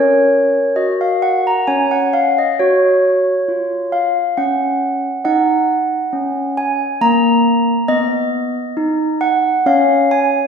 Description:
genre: classical, tune for handbells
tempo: 64-69 BPM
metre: 3/4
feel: straight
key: F# major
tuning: A4 = 441 Hz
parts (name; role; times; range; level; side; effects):
- handbells; solo; 0.0-10.5 s; A#3 to A#5; -13 LUFS; equal; none
room: wet recital hall reverb, RT60 1.4 s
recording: recorded in a church or concert hall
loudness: -13 LUFS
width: side -6 dB against mid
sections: 0.0-10.5 A section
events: none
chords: 0.0 F#/C#; 1.7 N.C.; 2.6 F#5; 5.3 D#m; 7.9 B; 9.7 N.C.

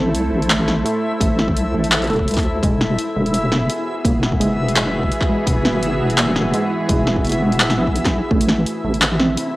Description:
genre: half-time drum and bass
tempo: 169 BPM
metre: 4/4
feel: swing 55% on 16ths, half-time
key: unclear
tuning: A4 = 441 Hz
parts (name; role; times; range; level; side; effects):
- bowed-like drone; sustained chords; 0.0-9.6 s; E3 to C5; -24 LUFS; equal; built-in reverb, sidechain pumping, cassette tape
- warbly dusty pluck; arpeggios; 0.0-9.3 s; G#3 to C4; -22 LUFS; right 1 dB; chorus, cassette tape, analog delay
- deep soft wobble bass; bass; 0.0-9.4 s; E1 to D2; -21 LUFS; equal; chorus
- backwards swelling texture; texture; 0.0-9.6 s; E4 to E5; -25 LUFS; equal; built-in reverb, cassette tape
- drum and bass drum kit; drums; 0.1-9.5 s; handclaps, hi-hat, snare drum; -20 LUFS; equal; overdrive, studio reverb, cassette tape
- electronic kick drum; drums; 1.2-8.4 s; none; -21 LUFS; equal; studio reverb, cassette tape
room: moderate spring reverb, RT60 1.5 s, digital ambience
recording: home recording on cassette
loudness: -15 LUFS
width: side -18 dB against mid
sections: 0.0-9.6 A section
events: none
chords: 0.0 Am; 2.6 E; 8.3 Am

